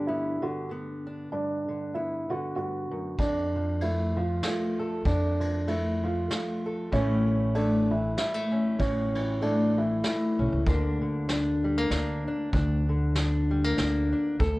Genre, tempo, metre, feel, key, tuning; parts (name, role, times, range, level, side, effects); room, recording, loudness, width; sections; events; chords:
acoustic folk duo or small band; 96 BPM; 3/4; swing 57% on 8ths; A4 = 440 Hz
fingerpicked old ladder-braced acoustic guitar; accompaniment; 0.0-14.6 s; D2 to A4; -29 LUFS; left 1 dB
dark upright piano; arpeggios; 0.0-10.7 s; C#4 to F#4; -30 LUFS; right 1 dB
upright bass; bass; 3.2-14.6 s; A1 to F2; -29 LUFS; equal
vintage brush drum kit; drums; 3.2-14.6 s; hi-hat, kick drum, ride cymbal, snare drum; -32 LUFS; equal
light reverb; worn, warbling old tape, cassette tape, warbly pitch drift; -25 LUFS; side -20 dB against mid
0.0-10.7 A section; 10.7-14.6 B section
0.0 G; 3.2 F; 6.9 A; 10.7 Bb/D